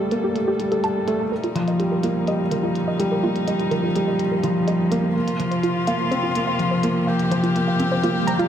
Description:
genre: piano and strings electronica.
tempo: 125 BPM.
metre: 4/4.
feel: straight.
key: unclear.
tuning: A4 = 440 Hz.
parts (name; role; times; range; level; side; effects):
dark string quartet; sustained chords; 0.0-8.5 s; Bb2 to A4; -26 LUFS; left 2 dB; none.
felt-muted upright piano; riff; 0.0-8.5 s; F3 to C4; -21 LUFS; equal; digital delay.
warbly dusty pluck; arpeggios; 0.1-8.4 s; F4 to Bb5; -27 LUFS; right 2 dB; chorus, digital delay.
electronic hi-hat; drums; 0.1-8.5 s; none; -39 LUFS; left 2 dB; low-pass filter on hats, studio ambience.
swell; sound effects; 8.2-8.5 s; none; -25 LUFS; right 4 dB; none.
room: wet recital hall reverb, RT60 1.4 s, small room ambience.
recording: none.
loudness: -19 LUFS.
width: side -9 dB against mid.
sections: 0.0-8.5 A section.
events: fade-in on string quartet 0.0-8.5; filter sweep on synth arpeggio sound 0.0-8.5; swell 8.2.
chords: 0.0 Gmadd9; 1.3 Ebadd9; 5.2 Bbsus2.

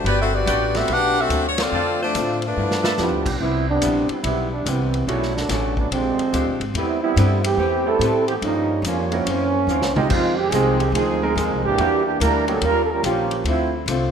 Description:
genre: jazz, big band swing.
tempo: 143 BPM.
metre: 4/4.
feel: swing 65% on 8ths.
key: G major.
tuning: A4 = 439 Hz.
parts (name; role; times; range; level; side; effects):
clear saxophone section; melody; 0.0-3.3 s; A3 to F#5; -21 LUFS; left 1 dB; none.
archtop guitar, miked and amplified; accompaniment; 0.0-14.1 s; F2 to B4; -27 LUFS; left 5 dB; none.
clear trumpet section; stabs; 0.0-2.9 s; F4 to A5; -28 LUFS; right 1 dB; none.
upright bass; bass; 0.0-14.1 s; G1 to A2; -24 LUFS; equal; none.
vintage drum kit; drums; 0.1-14.0 s; crash cymbal, hi-hat, kick drum, ride cymbal, snare drum, toms; -29 LUFS; left 1 dB; none.
bright upright piano; accompaniment; 0.8-12.6 s; F3 to Bb4; -28 LUFS; right 3 dB; none.
clear trombone section; second line; 3.0-13.7 s; D3 to Bb4; -21 LUFS; right 4 dB; none.
room: moderate scoring stage reverb, RT60 1.9 s.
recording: minimal, uncompressed stereo recording.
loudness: -18 LUFS.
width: side -7 dB against mid.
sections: 0.0-3.4 A section; 3.4-14.1 B section.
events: band accent 1.5; drum fill 2.6-3.0, 9.7-10.1; trombone section solo 3.4-14.1.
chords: 0.1 Gmaj7; 1.7 Dm7; 2.6 G13; 3.4 Cmaj7; 5.1 Bm7; 5.9 Bb13; 6.8 Am9; 8.4 Gm7b5; 9.3 F#7#11; 10.1 Fm7; 11.8 Em7b5; 12.6 Eb9; 13.5 Dm7.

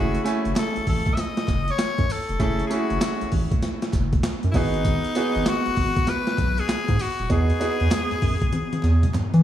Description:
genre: R&B, new jack swing.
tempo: 98 BPM.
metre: 4/4.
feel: swing 64% on 16ths.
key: F# dorian.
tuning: A4 = 441 Hz.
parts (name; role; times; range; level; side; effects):
raspy tenor saxophone; melody; 0.0-9.1 s; D#4 to E5; -27 LUFS; left 4 dB; digital delay.
bright grand piano; accompaniment; 0.0-9.4 s; A3 to G#5; -27 LUFS; right 2 dB; none.
round analog bass; bass; 0.0-9.4 s; D#1 to E3; -22 LUFS; equal; none.
breakbeat sampler-style drum kit; drums; 0.1-9.4 s; handclaps, hi-hat, kick drum, snare drum, tambourine, toms; -24 LUFS; equal; none.
group handclap; percussion; 0.6-9.3 s; none; -45 LUFS; right 2 dB; none.
room: light reverb, digital ambience.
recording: small room ambience.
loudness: -20 LUFS.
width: side -11 dB against mid.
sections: 0.0-9.4 A section.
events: drum fill 8.5-9.4.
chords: 0.0 F#m7; 4.5 G#m7; 7.3 Emaj7.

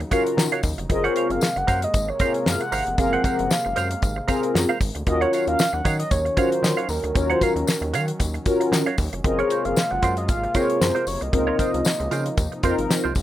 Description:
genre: early-eighties boogie funk.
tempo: 115 BPM.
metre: 4/4.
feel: swing 56% on 16ths.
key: unclear.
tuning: A4 = 439 Hz.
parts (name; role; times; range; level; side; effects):
warm analog pad; sustained chords; 0.0-13.2 s; C3 to F4; -33 LUFS; equal; chorus.
semi-hollow electric guitar; riff; 0.0-13.2 s; F4 to Gb5; -27 LUFS; right 7 dB; analog chorus.
rubbery square bass; bass; 0.0-13.2 s; F1 to Eb3; -28 LUFS; equal; none.
damped 70s drum kit; drums; 0.0-13.2 s; hi-hat, kick drum, snare drum; -24 LUFS; equal; none.
mellow synth brass; accompaniment; 0.1-13.1 s; F3 to Bb4; -23 LUFS; left 2 dB; chorus.
tambourine; percussion; 0.1-13.2 s; none; -34 LUFS; left 6 dB; none.
mellow horn-like synth lead; melody; 0.9-12.9 s; Bb4 to Gb5; -25 LUFS; equal; chorus, slapback echo.
room: little or no reverb.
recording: rough home demo mix.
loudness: -19 LUFS.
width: side -13 dB against mid.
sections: 0.0-13.2 A section.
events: none.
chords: 0.0 Ebm9; 0.9 Gbmaj9#11; 5.1 Ebm9; 9.2 Gbmaj9#11; 11.3 Dbmaj13.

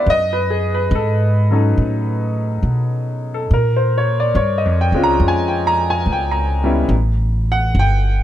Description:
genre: jazz ballad.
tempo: 70 BPM.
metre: 4/4.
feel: swing 68% on 8ths.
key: unclear.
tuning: A4 = 442 Hz.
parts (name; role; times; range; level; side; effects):
clear baby grand piano; accompaniment; 0.0-8.2 s; F#3 to Bb5; -18 LUFS; left 1 dB; none.
upright bass; bass; 0.1-8.2 s; G1 to B2; -17 LUFS; equal; none.
room: little or no reverb.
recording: close, detailed microphones.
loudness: -15 LUFS.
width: side -12 dB against mid.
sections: 0.0-8.2 A section.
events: none.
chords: 0.1 B9; 3.5 Bbm7; 6.9 A7(no3).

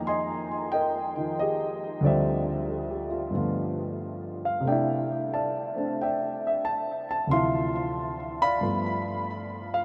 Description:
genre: solo jazz.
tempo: 91 BPM.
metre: 4/4.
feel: swing 69% on 8ths.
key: C major.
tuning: A4 = 440 Hz.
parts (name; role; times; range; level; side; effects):
dark grand piano; solo; 0.0-9.8 s; D2 to C6; -28 LUFS; equal; delay.
room: wet huge ambient reverb, RT60 8.8 s.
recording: dreamy mix soaked in reverb.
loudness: -28 LUFS.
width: mono.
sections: 0.0-9.8 A section.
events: none.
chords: 0.0 Fm11; 2.0 Dm11; 3.3 G9; 4.7 C69; 7.3 Dm9; 8.6 G9.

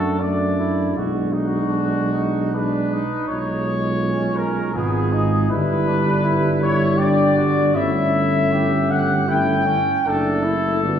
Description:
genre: classical, hymn-like piece for brass band.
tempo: 79 BPM.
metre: 3/4.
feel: uneven beats, rubato.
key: D major from 5.5 s.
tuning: A4 = 440 Hz.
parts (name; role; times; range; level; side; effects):
warm trumpet section; melody; 0.0-11.0 s; F#4 to G5; -23 LUFS; left 3 dB; none.
clear flugelhorn; second line; 0.0-11.0 s; B3 to G4; -27 LUFS; right 3 dB; none.
clear trombone; accompaniment; 0.0-11.0 s; G3 to B3; -26 LUFS; right 2 dB; none.
mellow euphonium; accompaniment; 0.0-11.0 s; C#4 to F#4; -25 LUFS; equal; none.
dark tuba; bass; 0.0-11.0 s; F#1 to F#2; -22 LUFS; right 1 dB; none.
room: wet scoring stage reverb, RT60 1.5 s.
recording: heard from further back in the room.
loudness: -17 LUFS.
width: side -8 dB against mid.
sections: 0.0-11.0 A section.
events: none.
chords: 0.0 D/F#; 1.0 G#m7b5/B; 3.3 C#7/B; 5.5 Em/G; 7.7 A7/G; 10.1 D/F#.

